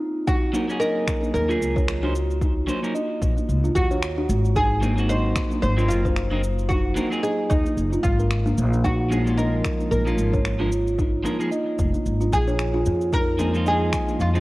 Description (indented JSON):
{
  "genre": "organic downtempo",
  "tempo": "112 BPM",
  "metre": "4/4",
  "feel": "swing 57% on 16ths",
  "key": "Eb dorian",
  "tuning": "A4 = 439 Hz",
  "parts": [
    { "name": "oud", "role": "melody", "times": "0.3-14.3 s", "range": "Eb4 to C5", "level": "-26 LUFS", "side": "equal", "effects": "tape echo" },
    { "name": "kalimba", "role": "arpeggios", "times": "0.3-14.4 s", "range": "Gb3 to Eb5", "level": "-26 LUFS", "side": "equal", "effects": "tape echo" },
    { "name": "electronic cabasa and finger snaps", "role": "drums", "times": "0.3-14.4 s", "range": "none", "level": "-33 LUFS", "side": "equal", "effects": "none" },
    { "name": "electronic kick drum", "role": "drums", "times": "0.3-14.1 s", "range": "none", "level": "-25 LUFS", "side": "equal", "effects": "none" },
    { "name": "electric guitar at the edge of break-up", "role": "accompaniment", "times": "0.5-14.4 s", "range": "F3 to C5", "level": "-30 LUFS", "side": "right 1 dB", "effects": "sidechain pumping, tape echo" },
    { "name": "upright bass", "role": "bass", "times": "1.3-14.4 s", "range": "F1 to F2", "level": "-23 LUFS", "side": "equal", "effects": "sidechain pumping" }
  ],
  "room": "light reverb, studio ambience",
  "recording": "worn, warbling old tape, cassette tape, warbly pitch drift",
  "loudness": "-20 LUFS",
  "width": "side -19 dB against mid",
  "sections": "0.3-14.4 A section",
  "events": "break 0.0",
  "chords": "0.3 Ebm7; 4.6 Ab9; 8.8 Bbm7; 13.1 Fm7"
}